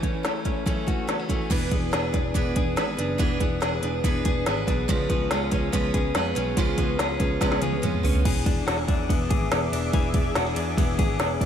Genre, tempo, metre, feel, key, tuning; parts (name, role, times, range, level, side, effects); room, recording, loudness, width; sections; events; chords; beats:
jangly indie pop; 142 BPM; 4/4; straight; A4 = 439 Hz
picked steel-string acoustic guitar; accompaniment; 0.0-8.3 s; F#2 to B4; -29 LUFS; right 4 dB
direct-recorded clean electric guitar; arpeggios; 0.0-11.5 s; E3 to G#4; -29 LUFS; left 6 dB; spring reverb, slapback echo
organic electronic drum kit; drums; 0.0-11.5 s; crash cymbal, hi-hat, kick drum, ride cymbal, snare drum, toms; -25 LUFS; equal
picked electric bass; bass; 1.5-11.5 s; E1 to E#2; -30 LUFS; right 1 dB
lush unison pad; sustained chords; 8.3-11.5 s; G#4 to D6; -33 LUFS; right 2 dB; chorus
moderate lush hall reverb, RT60 2.2 s; big arena sound; -22 LUFS; side -9 dB against mid
0.0-1.5 A section; 1.5-8.3 B section; 8.3-11.5 C section
drum fill 7.4-8.3
0.0 F#m7; 1.5 E7; 4.9 C#7; 8.3 E7
0.24 0.67 1.09 | 1.51 1.93 2.35 2.77 | 3.20 3.62 4.04 4.46 | 4.88 5.30 5.73 6.15 | 6.57 6.99 7.41 7.83 | 8.25 8.68 9.10 9.52 | 9.94 10.36 10.78 11.20